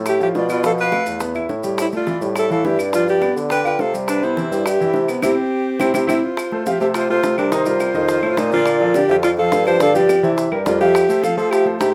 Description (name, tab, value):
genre	Afro-Cuban jazz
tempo	210 BPM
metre	4/4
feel	straight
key	C major, F major from 6.4 s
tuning	A4 = 440 Hz
part	clear concert grand piano	accompaniment	0.0-11.9 s	D3 to F5	-24 LUFS	equal	none
part	warm bassoon	bass	0.0-11.9 s	E2 to F3	-24 LUFS	equal	none
part	breathy alto saxophone	melody	0.1-11.9 s	C4 to C5	-21 LUFS	equal	none
part	breathy hollow jazz flute	second line	0.1-11.9 s	G4 to A5	-27 LUFS	equal	none
part	bongos	percussion	0.1-11.9 s	none	-30 LUFS	equal	none
part	claves	percussion	0.1-11.7 s	none	-33 LUFS	equal	none
part	maracas	percussion	0.1-11.9 s	none	-40 LUFS	equal	none
room	light reverb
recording	none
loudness	-18 LUFS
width	mono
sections	0.0-6.4 A section; 6.4-11.9 B section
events	band accent 5.2-6.4; drum fill 5.7-6.4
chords	0.0 Dmadd9; 0.6 Fmaj7#11; 1.2 E5; 1.8 A7sus4; 2.9 G7; 4.1 Cmaj7; 6.4 Fadd9; 7.5 Cm7; 8.1 F7; 8.7 Bbmaj7; 9.8 G7sus4; 10.4 C7; 10.9 Fmaj9